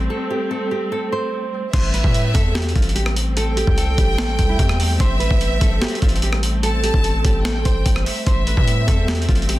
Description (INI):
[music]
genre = hip hop, trap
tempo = 147 BPM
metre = 4/4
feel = half-time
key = A minor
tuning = A4 = 440 Hz
[part]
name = dark symphonic string section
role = sustained chords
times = 0.0-9.6 s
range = G3 to C4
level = -28 LUFS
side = left 1 dB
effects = none
[part]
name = distorted 808-style bass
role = bass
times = 0.0-9.6 s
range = A1 to A2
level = -20 LUFS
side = equal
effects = distortion
[part]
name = nylon-string guitar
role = melody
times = 0.1-9.6 s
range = E4 to C5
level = -25 LUFS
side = right 3 dB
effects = none
[part]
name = rich studio violin section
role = second line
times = 1.7-9.4 s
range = E5 to A5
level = -27 LUFS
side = equal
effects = ping-pong delay
[part]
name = breakbeat sampler-style drum kit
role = drums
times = 1.7-9.6 s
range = crash cymbal, hi-hat, kick drum, rim click, snare drum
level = -19 LUFS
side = equal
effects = none
[sound]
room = small room ambience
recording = dense, heavily limited modern master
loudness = -16 LUFS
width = side -16 dB against mid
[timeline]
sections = 0.0-1.7 A section; 1.7-9.6 B section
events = break 0.1-1.7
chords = 0.0 Am7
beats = | 0.10 0.51 0.92 1.33 | 1.74 2.14 2.55 2.96 | 3.37 3.78 4.18 4.59 | 5.00 5.41 5.82 6.22 | 6.63 7.04 7.45 7.86 | 8.27 8.67 9.08 9.49